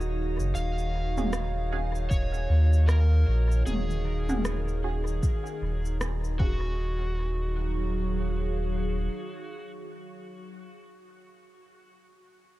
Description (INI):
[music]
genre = ambient dub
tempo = 77 BPM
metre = 4/4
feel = swing 60% on 16ths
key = Eb minor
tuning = A4 = 439 Hz
[part]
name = warbly tape-like pad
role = sustained chords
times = 0.0-10.7 s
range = Eb3 to F5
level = -37 LUFS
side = right 1 dB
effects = chorus, built-in reverb, phaser
[part]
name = warm sub bass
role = bass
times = 0.0-9.1 s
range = Eb1 to Eb2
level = -26 LUFS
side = equal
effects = none
[part]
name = organic electronic drum kit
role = drums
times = 0.0-6.4 s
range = rim click, shaker, toms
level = -35 LUFS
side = equal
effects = dub echo
[part]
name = drifting glass-harmonics texture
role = texture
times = 0.0-6.8 s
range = Eb5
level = -49 LUFS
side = right 8 dB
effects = none
[part]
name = overdriven slide guitar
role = melody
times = 0.5-9.7 s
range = Gb4 to F5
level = -37 LUFS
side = equal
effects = dub echo
[part]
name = filtered dub chord stab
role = stabs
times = 1.2-9.7 s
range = Db4 to F5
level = -42 LUFS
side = right 5 dB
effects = phaser, dub echo
[part]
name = electronic kick drum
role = drums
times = 2.1-6.6 s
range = none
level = -26 LUFS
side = equal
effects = none
[sound]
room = digital ambience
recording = dark, warm production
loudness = -25 LUFS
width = side -16 dB against mid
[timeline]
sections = 0.0-6.8 A section; 6.8-9.9 B section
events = band accent 6.0-6.4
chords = 0.0 Gbsus2/Eb; 6.4 Ebm11